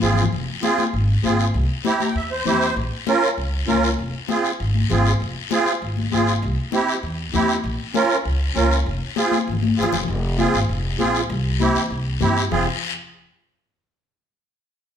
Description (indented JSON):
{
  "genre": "latin, cumbia",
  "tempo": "197 BPM",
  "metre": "4/4",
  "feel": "straight",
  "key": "F harmonic minor",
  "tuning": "A4 = 435 Hz",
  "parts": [
    { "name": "musette accordion", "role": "accompaniment", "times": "0.0-12.7 s", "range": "C4 to Bb5", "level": "-21 LUFS", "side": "right 3 dB", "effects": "none" },
    { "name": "upright bass", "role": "bass", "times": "0.0-12.7 s", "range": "F1 to G2", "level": "-22 LUFS", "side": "equal", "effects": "none" },
    { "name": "guiro", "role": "percussion", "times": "0.0-12.6 s", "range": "none", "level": "-30 LUFS", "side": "left 6 dB", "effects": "none" },
    { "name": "congas", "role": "percussion", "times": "0.1-12.6 s", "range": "none", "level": "-25 LUFS", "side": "left 6 dB", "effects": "none" }
  ],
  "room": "wet large studio reverb, RT60 0.9 s",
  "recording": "band playing live in one room",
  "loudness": "-18 LUFS",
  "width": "side -8 dB against mid",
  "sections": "0.3-10.1 A section; 10.1-12.5 B section; 12.5-13.7 C section",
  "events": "drum fill 0.0-0.3, 9.3-10.1; accordion fill 1.9-2.8",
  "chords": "0.3 Fm; 1.5 C; 2.8 Bbm; 4.0 Fm; 6.4 C; 7.6 Bbm; 8.9 Fm; 11.3 C; 12.5 Fm"
}